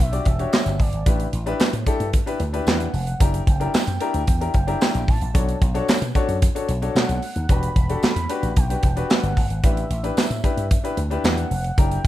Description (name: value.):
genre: early-eighties boogie funk.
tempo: 112 BPM.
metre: 4/4.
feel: straight.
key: unclear.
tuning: A4 = 440 Hz.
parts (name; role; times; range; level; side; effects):
gliding portamento lead; melody; 0.0-12.1 s; D5 to B5; -32 LUFS; right 2 dB; chorus.
slap bass with an envelope filter; bass; 0.0-12.1 s; E1 to B2; -24 LUFS; equal; none.
modern studio drum kit; drums; 0.0-12.1 s; handclaps, hi-hat, kick drum, snare drum; -20 LUFS; equal; none.
clear concert grand piano; accompaniment; 0.1-12.0 s; D4 to D5; -26 LUFS; left 4 dB; plate reverb.
tambourine; percussion; 0.5-11.4 s; none; -37 LUFS; right 8 dB; none.
room: light reverb.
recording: rough home demo mix.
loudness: -18 LUFS.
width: side -14 dB against mid.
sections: 0.0-12.1 A section.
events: none.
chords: 0.0 Em7; 1.1 A7sus4; 3.2 F#7b9b13; 5.3 Bm9; 7.5 Em7; 9.6 A7sus4.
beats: 0.53 | 1.06 1.60 2.13 2.67 | 3.21 3.74 4.28 4.81 | 5.35 5.88 6.42 6.96 | 7.49 8.03 8.56 9.10 | 9.63 10.17 10.71 11.24 | 11.78.